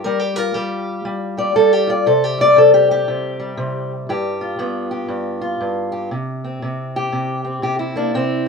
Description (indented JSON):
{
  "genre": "acoustic country blues, solo or duo",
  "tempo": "119 BPM",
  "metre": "4/4",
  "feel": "swing 62% on 8ths",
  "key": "C major",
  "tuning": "A4 = 439 Hz",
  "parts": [
    { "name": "fingerpicked steel-string acoustic guitar", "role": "solo", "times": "0.0-8.5 s", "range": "G2 to D5", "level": "-16 LUFS", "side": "left 1 dB", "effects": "none" }
  ],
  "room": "moderate studio reverb, RT60 0.5 s",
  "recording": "minimal, uncompressed stereo recording",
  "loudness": "-16 LUFS",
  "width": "side -4 dB against mid",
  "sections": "0.0-6.1 A section; 6.1-8.5 B section",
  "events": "steel-string acoustic guitar solo 0.0-6.1",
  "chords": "0.0 Gm7; 2.1 C5; 4.1 G7; 6.1 C",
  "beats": "| 0.04 0.55 1.05 1.56 | 2.06 2.57 3.07 3.58 | 4.08 4.59 5.10 5.60 | 6.11 6.62 7.12 7.63 | 8.14"
}